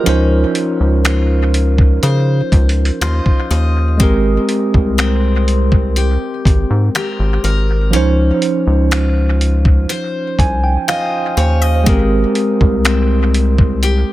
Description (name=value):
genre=contemporary R&B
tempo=61 BPM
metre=4/4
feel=straight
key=unclear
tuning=A4 = 440 Hz
part: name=bright tine electric piano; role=accompaniment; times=0.0-14.1 s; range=F3 to C6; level=-18 LUFS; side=right 2 dB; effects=slow stereo tremolo, dub echo
part: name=picked steel-string acoustic guitar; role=arpeggios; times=0.0-14.1 s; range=Ab3 to Eb5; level=-22 LUFS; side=left 6 dB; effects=dub echo
part: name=rubbery square bass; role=bass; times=0.1-14.0 s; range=Ab1 to Db3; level=-14 LUFS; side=equal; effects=none
part: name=dusty soul sampler-style drum kit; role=drums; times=0.1-14.1 s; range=finger snaps, hi-hat, kick drum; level=-16 LUFS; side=equal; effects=none
room=little or no reverb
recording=echo-heavy mix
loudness=-12 LUFS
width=side -16 dB against mid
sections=0.0-14.1 A section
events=tine electric piano fill 2.5-4.0, 9.9-11.9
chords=0.1 Dbmaj9; 4.0 Abmaj9; 7.9 Dbmaj9; 11.9 Abmaj9